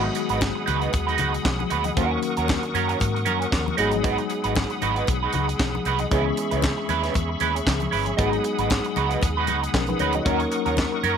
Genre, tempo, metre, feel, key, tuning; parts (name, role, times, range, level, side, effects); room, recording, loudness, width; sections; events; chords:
disco; 116 BPM; 4/4; swing 56% on 16ths; G# minor; A4 = 441 Hz
electric guitar at the edge of break-up; accompaniment; 0.0-11.2 s; C#4 to B4; -26 LUFS; right 8 dB; wah
tine electric piano; accompaniment; 0.0-11.2 s; D#3 to D#5; -28 LUFS; left 4 dB; medium stereo tremolo
bright tonewheel organ; sustained chords; 0.0-11.2 s; G#4 to D#6; -29 LUFS; left 1 dB; overdrive, chorus vibrato, fast rotary speaker
vintage muted fingered electric bass; bass; 0.0-11.2 s; G1 to G#2; -28 LUFS; equal; tube saturation
tight funk drum kit; drums; 0.1-11.2 s; handclaps, hi-hat, kick drum, snare drum; -26 LUFS; equal
congas; percussion; 0.4-11.2 s; -33 LUFS; left 7 dB
little or no reverb; -21 LUFS; side -7 dB against mid
0.0-11.2 A section
0.0 G#m7; 2.0 D#m7; 3.8 G#m7; 6.1 C#m7; 8.2 G#m7; 10.3 D#m7